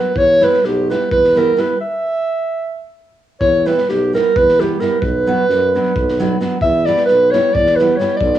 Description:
balkan folk, Balkan wedding band; 261 BPM (eighths); 7/8; straight; E dorian sharp4; A4 = 441 Hz
warm clarinet; melody; 0.0-8.4 s; G4 to E5; -14 LUFS; right 1 dB; cassette tape
nylon-string guitar; accompaniment; 0.0-8.2 s; F#3 to G4; -21 LUFS; right 2 dB
warm tuba; bass; 0.2-8.4 s; B1 to F#2; -20 LUFS; right 1 dB
crunchy breakbeat drum kit; percussion; 0.2-8.4 s; kick drum, snare drum; -26 LUFS; equal; cassette tape
moderate digital room reverb, RT60 1.2 s, small room ambience; home recording on cassette; -12 LUFS; side -12 dB against mid
0.0-3.4 A section; 3.4-8.4 A section
stop 1.8-3.4
0.2 Em; 1.8 N.C.; 3.4 Em; 5.0 Bm; 6.6 Em

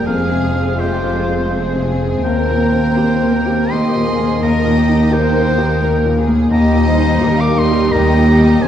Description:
cinematic; 84 BPM; 3/4; rubato; Eb major; A4 = 440 Hz
warm symphonic violin section; melody; 0.0-8.7 s; F4 to C5; -25 LUFS; left 5 dB
bright oboe; second line; 0.0-8.7 s; C5 to D6; -22 LUFS; right 2 dB
warm symphonic violin section; second line; 0.0-8.7 s; F4 to F5; -25 LUFS; left 2 dB
felt-muted upright piano; accompaniment; 0.0-8.7 s; Eb2 to Bb4; -18 LUFS; left 2 dB
rich studio viola section; accompaniment; 0.0-8.7 s; G3 to Eb4; -23 LUFS; right 1 dB
warm French horn section; sustained chords; 0.0-8.7 s; Ab3 to C5; -22 LUFS; left 5 dB
rich symphonic cello section; bass; 0.0-8.7 s; Eb2 to F2; -20 LUFS; right 3 dB
rich symphonic double bass section; bass; 0.0-8.7 s; F1 to Eb2; -19 LUFS; right 2 dB
moderate scoring stage reverb, RT60 2.0 s; dark, warm production, faint mains hum; -12 LUFS; side -10 dB against mid
0.0-8.7 A section
0.1 Fm; 2.2 Cm7/Eb; 4.4 Eb

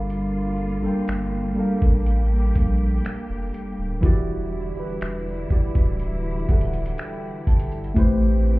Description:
contemporary R&B; 61 BPM; 4/4; straight; A4 = 440 Hz
muted felt-like synth keys; accompaniment; 0.0-8.6 s; E3 to D6; -26 LUFS; equal; chorus
warm studio string section; sustained chords; 0.0-8.6 s; D3 to G4; -33 LUFS; left 1 dB
sub bass with octave; bass; 0.0-8.6 s; D1 to Bb1; -24 LUFS; equal
dusty soul sampler-style drum kit; drums; 0.1-8.2 s; finger snaps, hi-hat, kick drum; -20 LUFS; equal
little or no reverb; heard muffled through a wall, club reverb, EQ; -20 LUFS; side -20 dB against mid
0.0-8.6 A section
synth keys fill 6.0-8.0
0.0 Gm9; 4.0 Em9; 8.0 Am9

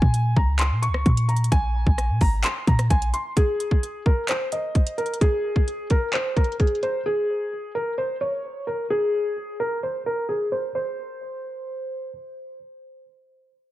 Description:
hip hop, trap; 130 BPM; 4/4; half-time; A4 = 440 Hz
felt-muted upright piano; melody; 0.0-12.1 s; Ab4 to Db6; -26 LUFS; equal; low-pass filter, tape echo
clean 808-style bass; bass; 0.0-3.1 s; Ab1 to Bb2; -21 LUFS; equal
trap drum kit; drums; 0.0-6.9 s; handclaps, hi-hat, kick drum, rim click; -21 LUFS; equal
light reverb, digital ambience; low-pass filter; -21 LUFS; side -15 dB against mid
0.0-3.4 A section; 3.4-10.8 B section; 10.8-13.7 C section
filter sweep 3.4-10.8
0.0 Bbm7; 3.4 N.C.

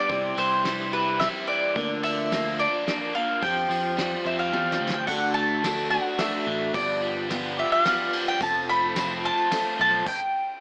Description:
folk rock and heartland rock; 108 BPM; 3/4; straight; A4 = 440 Hz
mandolin; melody; 0.0-10.6 s; B4 to B5; -24 LUFS; equal
picked steel-string acoustic guitar; accompaniment; 0.0-10.1 s; G2 to Bb4; -31 LUFS; equal
bright tonewheel organ; sustained chords; 0.0-10.0 s; F4 to C6; -38 LUFS; equal
overdriven electric guitar; riff; 0.0-10.1 s; F2 to G4; -30 LUFS; equal; spring reverb
picked electric bass; bass; 0.1-10.0 s; F1 to F2; -36 LUFS; equal
soft brush drum kit; drums; 0.1-10.2 s; crash cymbal, kick drum, ride cymbal, snare drum, toms; -33 LUFS; equal
tambourine; percussion; 8.4-9.6 s; -44 LUFS; equal
light reverb, small room ambience; small speaker sound; -22 LUFS; side -36 dB against mid
0.0-5.1 A section; 5.1-10.6 B section
drum fill 4.5-5.1; stop 10.1-10.6
0.1 C; 1.8 Bb/D; 3.4 Fsus2; 5.1 D; 6.7 G7; 8.4 F; 10.1 N.C.

